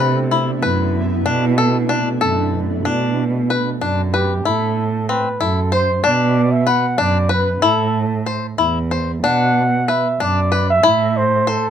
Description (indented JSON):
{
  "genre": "contemporary instrumental, chamber music in an uneven meter",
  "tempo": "188 BPM (eighths)",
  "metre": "5/8",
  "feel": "straight",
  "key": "B phrygian",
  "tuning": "A4 = 440 Hz",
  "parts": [
    { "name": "shimmering ambient pad", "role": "sustained chords", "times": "0.0-2.8 s", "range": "B2 to E4", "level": "-24 LUFS", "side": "equal", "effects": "chorus, built-in reverb" },
    { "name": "bluegrass banjo", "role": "arpeggios", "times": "0.0-11.7 s", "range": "C4 to C5", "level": "-19 LUFS", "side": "left 6 dB", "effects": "none" },
    { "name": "muted cello", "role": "bass", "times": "0.0-11.6 s", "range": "E2 to C3", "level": "-19 LUFS", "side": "right 3 dB", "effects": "none" },
    { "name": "mellow flugelhorn", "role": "melody", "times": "4.1-11.7 s", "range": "G4 to F#5", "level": "-19 LUFS", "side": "right 1 dB", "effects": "none" }
  ],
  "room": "light reverb",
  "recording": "none",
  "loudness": "-15 LUFS",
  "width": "side -9 dB against mid",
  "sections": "0.0-2.9 A section; 2.9-11.7 B section",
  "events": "none",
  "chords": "0.0 Cmaj7; 1.3 Bm7; 2.9 Bm; 4.5 Am; 6.0 Bm; 7.6 Am; 9.2 Bm; 10.8 Am",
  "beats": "0.00 0.31 0.62 0.94 | 1.25 1.57 1.89 2.21 2.53 | 2.85 3.17 3.50 3.81 4.13 | 4.45 4.77 5.09 5.41 5.72 | 6.04 6.35 6.67 6.99 7.30 | 7.62 7.94 8.26 8.59 8.91 | 9.24 9.56 9.88 10.20 10.52 | 10.84 11.16 11.47"
}